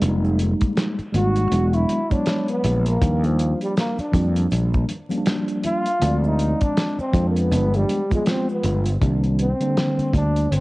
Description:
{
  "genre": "hip hop, jazz-hop",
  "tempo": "80 BPM",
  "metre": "4/4",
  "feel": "swing 59% on 16ths",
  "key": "C minor",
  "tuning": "A4 = 440 Hz",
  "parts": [
    { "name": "mellow tine electric piano", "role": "accompaniment", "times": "0.0-10.6 s", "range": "D3 to D5", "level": "-24 LUFS", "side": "equal", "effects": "medium stereo tremolo, cassette tape" },
    { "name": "fretless electric bass", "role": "bass", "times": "0.0-10.6 s", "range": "E1 to F2", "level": "-20 LUFS", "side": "equal", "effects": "none" },
    { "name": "cloth-damped thuddy drum kit", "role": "drums", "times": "0.0-10.6 s", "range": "hi-hat, kick drum, snare drum", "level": "-24 LUFS", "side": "equal", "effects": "cassette tape" },
    { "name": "maracas and congas", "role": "percussion", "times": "0.0-9.0 s", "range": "none", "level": "-40 LUFS", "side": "right 3 dB", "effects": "none" },
    { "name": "breathy trombone", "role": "melody", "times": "1.2-10.6 s", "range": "F3 to F#4", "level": "-25 LUFS", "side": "equal", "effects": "cassette tape" }
  ],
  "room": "light reverb, studio ambience",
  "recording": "home recording on cassette, vinyl crackle, nothing above 10.6 kHz",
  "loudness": "-18 LUFS",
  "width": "side -20 dB against mid",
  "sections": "0.0-9.0 A section; 9.0-10.6 B section",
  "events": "trombone solo 0.0-9.0",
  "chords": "0.0 Fm11; 1.5 E9; 3.0 Ebmaj9; 6.0 Dm7b5; 7.5 G7b9; 9.0 Cm9"
}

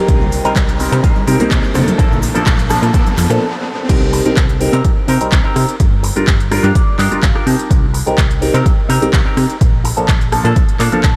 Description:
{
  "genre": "filtered disco house",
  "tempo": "126 BPM",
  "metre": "4/4",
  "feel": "straight",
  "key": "C dorian",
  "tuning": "A4 = 440 Hz",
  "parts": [
    { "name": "warm grand piano", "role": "accompaniment", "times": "0.0-11.1 s", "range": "F3 to Bb4", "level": "-20 LUFS", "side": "equal", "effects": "phaser, sidechain pumping, low-pass filter" },
    { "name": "electric guitar with an envelope filter", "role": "riff", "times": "0.0-11.2 s", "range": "Bb3 to A5", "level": "-25 LUFS", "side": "equal", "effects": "sidechain pumping, low-pass filter" },
    { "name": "riser", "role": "sound effects", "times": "0.3-3.9 s", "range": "none", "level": "-29 LUFS", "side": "equal", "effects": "none" },
    { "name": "plucky analog bass", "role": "bass", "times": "0.1-11.1 s", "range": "G1 to C3", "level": "-19 LUFS", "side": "equal", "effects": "sidechain pumping, low-pass filter" },
    { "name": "electronic kick drum", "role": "drums", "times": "0.1-11.1 s", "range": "none", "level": "-16 LUFS", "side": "equal", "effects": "studio reverb" },
    { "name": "house drum kit", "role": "drums", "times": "0.1-11.1 s", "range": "crash cymbal, handclaps, hi-hat, rim click", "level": "-25 LUFS", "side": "equal", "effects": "sidechain pumping on hats, studio reverb, sidechain pumping on cymbals" },
    { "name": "egg shaker and congas", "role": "percussion", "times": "0.1-3.4 s", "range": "none", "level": "-25 LUFS", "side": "equal", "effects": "sidechain pumping on perc, low-pass filter on perc" }
  ],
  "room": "moderate huge ambient reverb, RT60 7.0 s",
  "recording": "dreamy mix soaked in reverb",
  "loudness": "-13 LUFS",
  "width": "mono",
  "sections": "0.0-3.9 A section; 3.9-11.2 B section",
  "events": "build-up 0.0-3.9; riser 0.3-3.9; break 3.4-3.9; drop 3.9-11.2; clean electric guitar fill 6.3-7.7, 10.6-11.2",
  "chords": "0.0 Cm7; 2.0 Bbmaj7; 3.9 Cm7; 5.8 Gm7; 7.5 Cm7; 9.6 Bbmaj7"
}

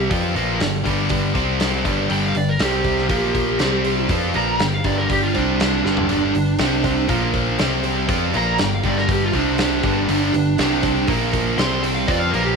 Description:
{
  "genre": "classic rock",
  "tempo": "120 BPM",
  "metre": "4/4",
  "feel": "straight",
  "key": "unclear",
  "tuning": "A4 = 439 Hz",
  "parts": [
    { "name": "lead guitar through a small cranked amp", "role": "melody", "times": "0.0-12.6 s", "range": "D4 to C6", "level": "-23 LUFS", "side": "right 4 dB", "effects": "overdrive, tape echo" },
    { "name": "bright upright piano", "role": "accompaniment", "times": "0.0-12.5 s", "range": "Bb3 to D5", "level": "-31 LUFS", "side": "right 12 dB", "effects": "none" },
    { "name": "biting overdriven guitar", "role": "riff", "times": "0.0-12.6 s", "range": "G2 to F4", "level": "-23 LUFS", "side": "left 12 dB", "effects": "none" },
    { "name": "cranked stack guitar", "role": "riff", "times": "0.0-12.6 s", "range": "G2 to F4", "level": "-24 LUFS", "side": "right 12 dB", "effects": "overdrive" },
    { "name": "picked electric bass", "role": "bass", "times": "0.0-12.6 s", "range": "G1 to F2", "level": "-25 LUFS", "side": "left 1 dB", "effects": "none" },
    { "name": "big rock drum kit", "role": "drums", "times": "0.1-12.5 s", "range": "hi-hat, kick drum, snare drum, toms", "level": "-24 LUFS", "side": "equal", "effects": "none" }
  ],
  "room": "light reverb, studio reverb",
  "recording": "1960s-style stereo with parts hard left and right",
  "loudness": "-17 LUFS",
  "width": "side -5 dB against mid",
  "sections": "0.0-12.6 A section",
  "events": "lead electric guitar solo 0.0-12.6; drum fill 5.8",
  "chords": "0.1 G; 1.4 C5; 1.9 G; 2.6 C5; 3.1 Bb5; 3.6 C5; 4.1 G; 5.3 C5; 5.8 G; 6.6 C5; 7.1 Bb5; 7.6 C5; 8.1 G; 9.3 C5; 9.8 G; 10.6 C5; 11.1 Bb5; 11.6 C5"
}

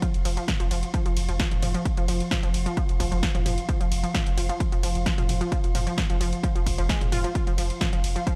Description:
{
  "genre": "driving peak-time techno",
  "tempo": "131 BPM",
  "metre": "4/4",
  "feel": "straight",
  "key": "unclear",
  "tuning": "A4 = 440 Hz",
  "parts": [
    { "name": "unison pluck", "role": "riff", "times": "0.0-8.3 s", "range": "F3 to F4", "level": "-34 LUFS", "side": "equal", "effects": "overdrive, sidechain pumping, tape echo" },
    { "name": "metallic inharmonic drone", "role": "drone", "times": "0.0-8.4 s", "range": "F3 to F4", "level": "-38 LUFS", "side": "equal", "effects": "chorus, built-in reverb, sidechain pumping" },
    { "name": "electronic kick drum", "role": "drums", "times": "0.0-8.4 s", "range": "none", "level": "-28 LUFS", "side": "equal", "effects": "overdrive" },
    { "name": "punchy analog drum machine", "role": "drums", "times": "0.0-8.4 s", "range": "hi-hat, ride cymbal, snare drum, toms", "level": "-34 LUFS", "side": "equal", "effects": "none" },
    { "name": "warm sub bass", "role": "bass", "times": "0.1-8.2 s", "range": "F1", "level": "-30 LUFS", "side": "equal", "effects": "overdrive, sidechain pumping, low-pass filter" }
  ],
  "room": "little or no reverb",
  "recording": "none",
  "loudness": "-25 LUFS",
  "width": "mono",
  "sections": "0.0-8.4 A section",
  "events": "none",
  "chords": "none"
}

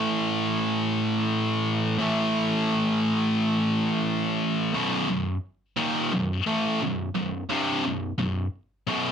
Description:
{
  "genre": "metal",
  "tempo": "87 BPM",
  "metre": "4/4",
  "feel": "straight",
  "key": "unclear",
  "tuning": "A4 = 439 Hz",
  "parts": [
    { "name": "high-gain distorted guitar", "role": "solo", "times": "0.0-9.1 s", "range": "B1 to A3", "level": "-23 LUFS", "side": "equal", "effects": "distortion" }
  ],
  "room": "light reverb",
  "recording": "faint mains hum",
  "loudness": "-23 LUFS",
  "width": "side -7 dB against mid",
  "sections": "0.0-4.7 A section; 4.7-9.1 B section",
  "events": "none",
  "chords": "0.0 A5; 4.7 B"
}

